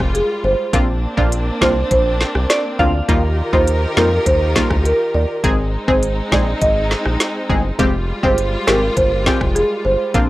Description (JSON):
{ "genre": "dancehall", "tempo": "102 BPM", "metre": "4/4", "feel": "straight", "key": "F dorian", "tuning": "A4 = 440 Hz", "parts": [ { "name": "rich studio string section", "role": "sustained chords", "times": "0.0-10.3 s", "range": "Eb3 to Bb4", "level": "-24 LUFS", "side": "equal", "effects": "sidechain pumping" }, { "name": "round analog bass", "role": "bass", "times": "0.0-10.3 s", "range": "F1 to F2", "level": "-19 LUFS", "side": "equal", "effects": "none" }, { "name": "island pop drum kit", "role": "drums", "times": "0.0-10.3 s", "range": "hi-hat, kick drum, rim click, snare drum", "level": "-19 LUFS", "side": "equal", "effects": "none" }, { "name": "impact", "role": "sound effects", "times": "0.0-0.7 s", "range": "none", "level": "barely audible", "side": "none", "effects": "none" }, { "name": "marimba with medium mallets", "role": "melody", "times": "0.1-9.9 s", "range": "Ab4 to Eb5", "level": "-19 LUFS", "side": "right 1 dB", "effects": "analog delay" }, { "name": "punchy chord stab", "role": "accompaniment", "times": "0.7-10.3 s", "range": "G3 to Ab4", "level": "-19 LUFS", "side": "left 1 dB", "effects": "chorus" }, { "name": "soft synth bell", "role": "second line", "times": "2.5-3.3 s", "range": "D5 to F5", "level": "-21 LUFS", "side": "right 1 dB", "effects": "chorus, analog delay" } ], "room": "digital ambience", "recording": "dry, gritty hardware recording, cassette tape", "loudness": "-14 LUFS", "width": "side -17 dB against mid", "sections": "0.0-10.3 A section", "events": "impact 0.0-0.7", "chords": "0.0 Fmadd9; 0.7 Bbadd9; 3.1 Ebadd9; 5.4 Ab; 7.8 Fmadd9" }